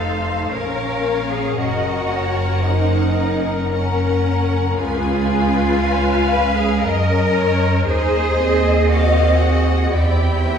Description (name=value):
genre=classical, slow romantic movement for string orchestra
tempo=57 BPM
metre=3/4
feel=rubato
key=unclear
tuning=A4 = 439 Hz
part: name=warm symphonic violin section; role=melody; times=0.0-10.6 s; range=Eb5 to Ab5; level=-28 LUFS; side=left 3 dB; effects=none
part: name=dark symphonic violin section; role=second line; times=0.0-10.6 s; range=Ab4 to F5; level=-24 LUFS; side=left 3 dB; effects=none
part: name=rich symphonic viola section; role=accompaniment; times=0.0-10.6 s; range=Bb3 to C5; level=-23 LUFS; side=left 1 dB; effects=none
part: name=clear symphonic cello section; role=bass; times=0.0-10.6 s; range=Db4 to C5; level=-22 LUFS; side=equal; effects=none
part: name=rich symphonic double bass section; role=bass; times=0.0-10.6 s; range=F1 to Gb2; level=-19 LUFS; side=right 1 dB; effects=none
room=wet recital hall reverb, RT60 1.4 s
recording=heard from further back in the room, small room ambience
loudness=-15 LUFS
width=side -7 dB against mid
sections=0.0-10.6 A section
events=none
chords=0.0 F7; 0.5 Bbm; 1.6 Gb; 4.8 Db7; 6.8 Gb6; 7.9 Cdim/Eb; 9.9 C7/E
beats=0.50 | 1.57 2.63 3.70 | 4.76 5.80 6.82 | 7.86 8.89 9.93